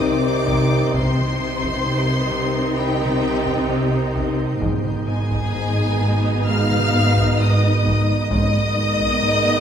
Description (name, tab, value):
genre	cinematic, suspense film score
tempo	65 BPM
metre	4/4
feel	straight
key	C harmonic minor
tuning	A4 = 440 Hz
part	rich studio violin section	melody	0.0-9.6 s	G5 to F6	-26 LUFS	left 3 dB	none
part	warm studio violin section	second line	0.0-9.6 s	G4 to F5	-26 LUFS	left 2 dB	none
part	dark studio viola section	accompaniment	0.0-9.6 s	Cb4 to Eb4	-27 LUFS	right 1 dB	none
part	dark French horn section	sustained chords	0.0-9.6 s	Ab3 to Eb4	-29 LUFS	left 7 dB	none
part	dark trombone section	sustained chords	0.0-9.6 s	Cb3 to Eb3	-28 LUFS	right 2 dB	none
part	shimmering ambient pad	sustained chords	0.0-9.6 s	Cb4 to G5	-30 LUFS	left 1 dB	chorus, built-in reverb
part	fat analog bass	riff	0.0-9.5 s	Ab2 to C4	-23 LUFS	left 1 dB	none
part	warm studio cello section	bass	0.0-9.6 s	Ab2 to C3	-26 LUFS	right 2 dB	none
part	warm studio double bass section	bass	0.0-9.6 s	Ab1 to C2	-25 LUFS	right 2 dB	none
part	concert harp	texture	0.0-6.7 s	B5 to B6	-38 LUFS	left 8 dB	none
part	taiko ensemble	drums	0.5-9.6 s	none	-29 LUFS	right 1 dB	none
room	wet recital hall reverb, RT60 1.4 s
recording	recorded in a church or concert hall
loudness	-17 LUFS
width	side -8 dB against mid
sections	0.0-9.6 A section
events	none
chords	0.0 Cm; 4.6 Abm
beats	0.01 | 0.94 1.86 2.78 3.70 | 4.62 5.54 6.49 7.40 | 8.31 9.22